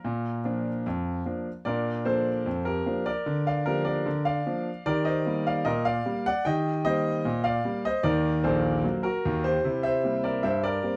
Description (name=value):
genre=ragtime piano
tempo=75 BPM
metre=2/4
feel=straight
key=Bb major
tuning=A4 = 443 Hz
part: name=clear concert grand piano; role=solo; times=0.0-11.0 s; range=Bb1 to Bb5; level=-27 LUFS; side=equal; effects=none
room=moderate studio reverb, RT60 0.6 s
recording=dark, warm production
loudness=-27 LUFS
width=mono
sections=0.0-1.7 A section; 1.7-11.0 B section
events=none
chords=0.0 Bb; 3.3 Bb/D; 4.9 Eb; 8.0 Ebm; 9.6 C7